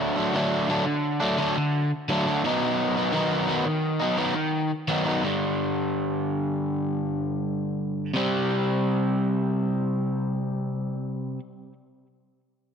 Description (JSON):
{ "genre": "rock", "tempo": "68-86 BPM", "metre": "4/4", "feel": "straight", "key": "G major", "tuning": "A4 = 440 Hz", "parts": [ { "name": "crunchy overdriven guitar", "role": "solo", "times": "0.0-11.4 s", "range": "G2 to D#4", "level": "-23 LUFS", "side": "equal", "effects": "analog delay" } ], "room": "moderate scoring stage reverb, RT60 1.9 s", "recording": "none", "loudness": "-23 LUFS", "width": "side -7 dB against mid", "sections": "0.0-5.2 A section; 5.2-11.4 B section; 11.4-12.7 C section", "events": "slowing down 5.2-11.4", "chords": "0.0 D; 2.4 B/D#; 5.2 G5; 8.2 C5; 11.4 N.C." }